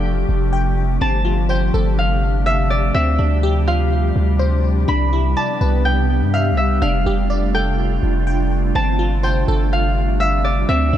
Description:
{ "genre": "hip hop", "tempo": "124 BPM", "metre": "4/4", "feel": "half-time", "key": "unclear", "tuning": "A4 = 440 Hz", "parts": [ { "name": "Celtic harp", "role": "melody", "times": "0.0-11.0 s", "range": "D5 to B5", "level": "-23 LUFS", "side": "equal", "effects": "low-pass filter, ping-pong delay" }, { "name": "glassy FM pad", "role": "sustained chords", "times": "0.0-11.0 s", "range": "C3 to G4", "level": "-22 LUFS", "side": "equal", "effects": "ensemble chorus, built-in reverb" }, { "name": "glassy wavetable pluck", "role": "arpeggios", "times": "0.0-11.0 s", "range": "C4 to G5", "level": "-26 LUFS", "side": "equal", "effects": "chorus, low-pass filter, ping-pong delay" }, { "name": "long sustained 808-style bass", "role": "bass", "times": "0.0-11.0 s", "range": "F1 to G2", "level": "-18 LUFS", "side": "equal", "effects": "none" } ], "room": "light reverb", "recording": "none", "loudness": "-15 LUFS", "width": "side -11 dB against mid", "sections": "0.0-11.0 A section", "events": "none", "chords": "0.0 F69; 1.0 G9sus4; 2.9 Dm11; 4.9 Cmaj9; 6.8 F69; 8.8 G9sus4", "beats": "0.04 0.53 | 1.01 1.50 1.98 2.46 | 2.95 3.43 3.92 4.40 | 4.88 5.37 5.85 6.34 | 6.82 7.30 7.79 8.27 | 8.76 9.24 9.72 10.21 | 10.69" }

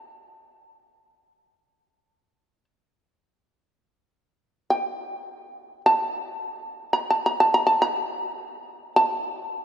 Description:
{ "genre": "japanese traditional, Japanese chamber music", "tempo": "free time", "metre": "none", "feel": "none", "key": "unclear", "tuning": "A4 = 445 Hz", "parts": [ { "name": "shamisen", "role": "solo", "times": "0.0-9.6 s", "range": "G5 to Bb5", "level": "-22 LUFS", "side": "equal", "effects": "none" } ], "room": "wet church reverb, RT60 3.2 s", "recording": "minimal, uncompressed stereo recording", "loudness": "-21 LUFS", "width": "side -9 dB against mid", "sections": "0.0-9.6 A section", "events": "none", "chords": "none", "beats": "free time" }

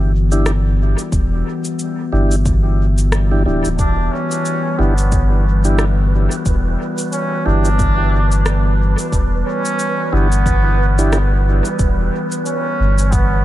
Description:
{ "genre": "ambient dub", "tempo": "90 BPM", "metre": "4/4", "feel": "swing 57% on 16ths", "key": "E dorian", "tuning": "A4 = 440 Hz", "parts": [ { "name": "warbly tape-like pad", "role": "sustained chords", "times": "0.0-13.4 s", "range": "E3 to F#4", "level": "-23 LUFS", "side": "left 3 dB", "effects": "chorus, built-in reverb" }, { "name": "soft dub sub bass", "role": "bass", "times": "0.0-13.4 s", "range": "D1 to G1", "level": "-15 LUFS", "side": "equal", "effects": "none" }, { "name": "tonewheel organ", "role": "stabs", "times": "0.3-11.2 s", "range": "D4 to G4", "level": "-25 LUFS", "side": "right 1 dB", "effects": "slow rotary speaker, dub echo" }, { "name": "electronic cabasa and rim click", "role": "drums", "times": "0.3-13.3 s", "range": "none", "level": "-27 LUFS", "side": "left 1 dB", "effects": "dub echo" }, { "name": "electronic kick drum", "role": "drums", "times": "1.1-13.3 s", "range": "none", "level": "-18 LUFS", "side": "equal", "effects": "none" }, { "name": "trombone with straight mute", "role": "melody", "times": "3.8-13.4 s", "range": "B3 to D4", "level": "-22 LUFS", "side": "right 1 dB", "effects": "dub echo" }, { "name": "wind-like tuned noise texture", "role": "texture", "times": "4.1-13.4 s", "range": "B4", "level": "-28 LUFS", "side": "right 5 dB", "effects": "built-in reverb" } ], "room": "little or no reverb", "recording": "none", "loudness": "-14 LUFS", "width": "side -14 dB against mid", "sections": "0.0-13.4 A section", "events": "none", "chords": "0.0 Em7", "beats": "0.46 | 1.13 1.79 2.46 3.13 | 3.79 4.46 5.13 5.79 | 6.46 7.13 7.79 8.46 | 9.13 9.79 10.46 11.13 | 11.79 12.46 13.13" }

